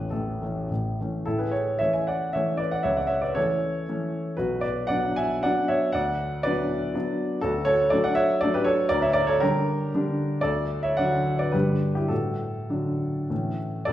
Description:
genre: classical, romantic triple-time dance for piano with dotted rhythms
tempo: 95-129 BPM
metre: 3/4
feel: rubato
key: A major, D major from 7.4 s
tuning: A4 = 440 Hz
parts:
  - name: clear grand piano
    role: solo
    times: 0.0-13.9 s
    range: D1 to G#5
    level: -23 LUFS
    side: equal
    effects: none
room: wet recital hall reverb, RT60 1.4 s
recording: heard from further back in the room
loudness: -23 LUFS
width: side -12 dB against mid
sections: 0.0-1.3 A section; 1.3-13.9 B section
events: none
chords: 0.0 A; 2.9 A/C#; 4.4 Bm; 5.9 Bm/D; 7.4 D; 8.9 Gm/D; 10.4 D; 11.5 G; 12.1 D/A; 13.3 A

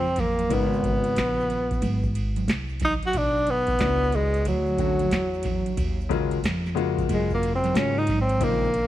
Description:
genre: hip hop, jazz-hop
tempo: 91 BPM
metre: 4/4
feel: swing 65% on 16ths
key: unclear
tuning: A4 = 440 Hz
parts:
  - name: breathy tenor saxophone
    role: melody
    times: 0.0-8.9 s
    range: F#3 to Gb4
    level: -24 LUFS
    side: equal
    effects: none
  - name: dark upright piano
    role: accompaniment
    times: 0.0-8.7 s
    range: Db3 to Bb4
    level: -29 LUFS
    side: left 7 dB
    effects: none
  - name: upright bass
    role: bass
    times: 0.0-8.9 s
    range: Ab1 to Ab2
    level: -27 LUFS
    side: right 1 dB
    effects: none
  - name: tube shaker and congas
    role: percussion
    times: 0.1-8.9 s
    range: none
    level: -37 LUFS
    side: right 7 dB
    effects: none
  - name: booming analog drum machine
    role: drums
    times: 0.2-8.9 s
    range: hi-hat, kick drum, ride cymbal, snare drum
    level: -29 LUFS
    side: equal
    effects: none
room: light reverb, small room ambience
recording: 1960s-style stereo with parts hard left and right, vinyl crackle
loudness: -22 LUFS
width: side -13 dB against mid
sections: 0.0-8.9 A section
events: tenor saxophone solo 0.0-8.9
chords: 0.0 Bbsus2; 0.5 Abm11; 3.1 Bmadd9; 5.8 Ebm11

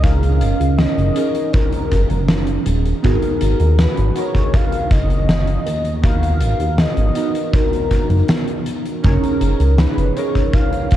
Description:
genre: vaporwave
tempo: 80 BPM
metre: 4/4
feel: straight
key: G# dorian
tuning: A4 = 439 Hz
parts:
  - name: warm velvety synth lead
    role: melody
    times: 0.0-11.0 s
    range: A#4 to E#5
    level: -25 LUFS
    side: left 1 dB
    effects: chorus, tape echo
  - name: warbly lo-fi synth keys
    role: accompaniment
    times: 0.0-11.0 s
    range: B3 to C#5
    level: -22 LUFS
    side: right 2 dB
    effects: phaser, wide subtle chorus
  - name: chorused synth bass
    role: bass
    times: 0.0-11.0 s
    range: D#1 to D#2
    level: -16 LUFS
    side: equal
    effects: none
  - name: huge arena drum kit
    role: drums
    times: 0.0-11.0 s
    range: hi-hat, snare drum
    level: -22 LUFS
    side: equal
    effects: none
  - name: kick drum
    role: drums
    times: 0.0-11.0 s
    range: none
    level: -18 LUFS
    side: equal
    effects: none
room: light reverb, small room ambience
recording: dark, warm production, cassette tape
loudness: -14 LUFS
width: side -12 dB against mid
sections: 0.0-11.0 A section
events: none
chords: 0.0 F#69; 3.0 G#m9; 9.0 F#69

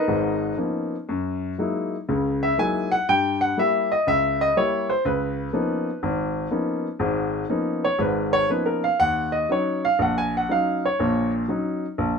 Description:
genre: solo jazz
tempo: 121 BPM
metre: 4/4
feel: swing 69% on 8ths, rubato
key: Db mixolydian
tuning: A4 = 441 Hz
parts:
  - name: warm concert grand piano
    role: solo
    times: 0.0-12.2 s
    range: Ab1 to Ab5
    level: -21 LUFS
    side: left 1 dB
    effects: none
room: light reverb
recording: minimal, uncompressed stereo recording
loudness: -21 LUFS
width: side -5 dB against mid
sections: 0.0-12.2 A section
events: grand piano solo 0.0-12.2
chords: 0.0 Db13; 1.1 Gb13; 3.1 Gdim7; 5.0 Db13; 9.0 Ebm7

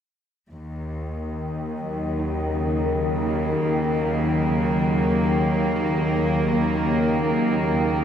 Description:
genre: dark ambient drone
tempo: free time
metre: none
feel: none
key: Eb minor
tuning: A4 = 441 Hz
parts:
  - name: rich chamber cello section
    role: sustained chords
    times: 0.5-8.0 s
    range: Eb2 to Bb3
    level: -24 LUFS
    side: right 1 dB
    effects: none
  - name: organ-like drone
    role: drone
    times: 1.0-8.0 s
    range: Eb2 to Eb3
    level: -23 LUFS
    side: left 1 dB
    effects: ensemble chorus, built-in reverb
  - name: dark detuned synth bell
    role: arpeggios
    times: 2.2-8.0 s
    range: none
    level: barely audible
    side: none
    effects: none
room: wet huge ambient reverb, RT60 8.0 s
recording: in a vast, echoing space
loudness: -20 LUFS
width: side -8 dB against mid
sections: 0.5-8.0 A section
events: none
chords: 0.5 Ebm

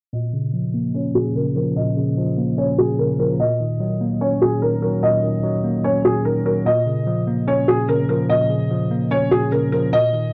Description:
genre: hip hop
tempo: 147 BPM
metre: 4/4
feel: half-time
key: Bb minor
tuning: A4 = 441 Hz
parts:
  - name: felt-muted upright piano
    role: melody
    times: 0.1-10.3 s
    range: Ab4 to Eb5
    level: -22 LUFS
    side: equal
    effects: low-pass filter
  - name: mellow tine electric piano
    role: accompaniment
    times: 0.1-10.3 s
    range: Bb2 to Db4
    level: -22 LUFS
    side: equal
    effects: low-pass filter
room: small room ambience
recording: dry, gritty hardware recording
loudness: -20 LUFS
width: mono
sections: 0.1-10.3 A section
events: filter sweep 0.1-10.3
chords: 0.1 Bbm; 3.4 Ebm7/Bb; 6.7 Bbm

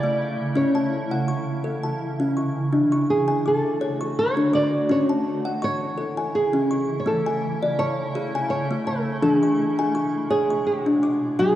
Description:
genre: world meditative, meditative tuned percussion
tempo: 83 BPM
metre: 3/4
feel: swing 54% on 16ths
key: unclear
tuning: A4 = 440 Hz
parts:
  - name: flamenco guitar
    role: melody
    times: 0.0-11.6 s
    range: F#4 to D5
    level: -25 LUFS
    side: right 2 dB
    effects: ping-pong delay
  - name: granular cloud pad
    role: sustained chords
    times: 0.0-11.4 s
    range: B2 to F#4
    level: -28 LUFS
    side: right 1 dB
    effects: built-in reverb
  - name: kalimba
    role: arpeggios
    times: 0.0-11.6 s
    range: E3 to D6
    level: -23 LUFS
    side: left 1 dB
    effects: none
room: wet church reverb, RT60 2.9 s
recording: worn, warbling old tape, cassette tape, warbly pitch drift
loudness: -20 LUFS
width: side -13 dB against mid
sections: 0.0-11.4 A section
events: none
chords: 0.0 A; 0.6 C#m; 2.7 D; 4.9 C#m; 7.1 A; 9.2 E

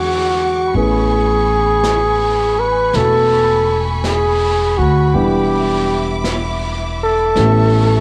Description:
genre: jazz ballad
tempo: 54 BPM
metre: 4/4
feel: swing 68% on 8ths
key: A major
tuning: A4 = 440 Hz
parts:
  - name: warm flugelhorn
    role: melody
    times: 0.0-8.0 s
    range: F#4 to B4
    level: -18 LUFS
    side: equal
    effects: cassette tape
  - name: warm grand piano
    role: accompaniment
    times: 0.0-8.0 s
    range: D3 to F#5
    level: -24 LUFS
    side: equal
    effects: cassette tape
  - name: warm symphonic string section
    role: sustained chords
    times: 0.0-8.0 s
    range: G#4 to D6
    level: -27 LUFS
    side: equal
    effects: cassette tape
  - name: upright bass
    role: bass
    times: 0.0-8.0 s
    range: E1 to E2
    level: -21 LUFS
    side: equal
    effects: none
  - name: jazz brush drum kit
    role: drums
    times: 0.7-8.0 s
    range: brushed snare drum, hi-hat, snare drum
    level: -30 LUFS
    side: equal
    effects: cassette tape
room: light reverb, studio ambience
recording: home recording on cassette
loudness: -15 LUFS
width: mono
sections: 0.0-8.0 A section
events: none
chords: 0.0 E13; 0.7 Amaj9; 5.1 Em7; 7.4 A7

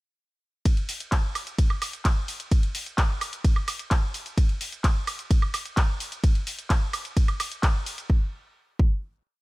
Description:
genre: EDM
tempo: 129 BPM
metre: 4/4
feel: straight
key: none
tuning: none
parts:
  - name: electronic kick drum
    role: drums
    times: 0.7-8.9 s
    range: none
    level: -21 LUFS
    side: equal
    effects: small room ambience
  - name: house drum kit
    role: drums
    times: 0.7-8.1 s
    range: handclaps, hi-hat, ride cymbal, shaker, woodblock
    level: -30 LUFS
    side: right 1 dB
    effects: small room ambience
room: little or no reverb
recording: none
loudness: -23 LUFS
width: side -21 dB against mid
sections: 0.7-8.1 drop; 8.1-9.4 final hit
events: drop 0.7-8.1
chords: none

